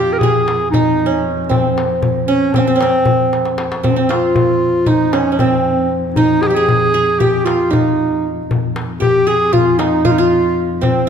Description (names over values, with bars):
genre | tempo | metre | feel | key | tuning
Turkish makam ensemble | 232 BPM (eighths) | 9/8 | straight | F makam nihavent | A4 = 439 Hz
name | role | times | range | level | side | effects
dark clarinet | melody | 0.0-11.1 s | C4 to Bb4 | -15 LUFS | equal | none
qanun | second line | 0.0-11.1 s | C4 to Ab4 | -18 LUFS | right 2 dB | none
dark cello | drone | 0.0-11.1 s | F2 | -24 LUFS | left 1 dB | none
darbuka | percussion | 0.2-10.9 s | none | -19 LUFS | left 2 dB | none
room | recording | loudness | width
moderate scoring stage reverb, RT60 2.1 s | minimal, uncompressed stereo recording | -12 LUFS | side -7 dB against mid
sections
0.0-11.1 A section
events
drum fill 3.3-3.8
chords
none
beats
0.21 0.47 0.73 0.98 1.24 | 1.50 1.76 2.02 2.28 2.54 2.80 3.06 3.32 3.58 | 3.83 4.09 4.35 4.61 4.87 5.13 5.39 5.65 5.91 | 6.17 6.42 6.68 6.94 7.20 7.46 7.72 7.98 8.24 | 8.49 8.75 9.01 9.27 9.53 9.79 10.05 10.31 10.56 | 10.82 11.08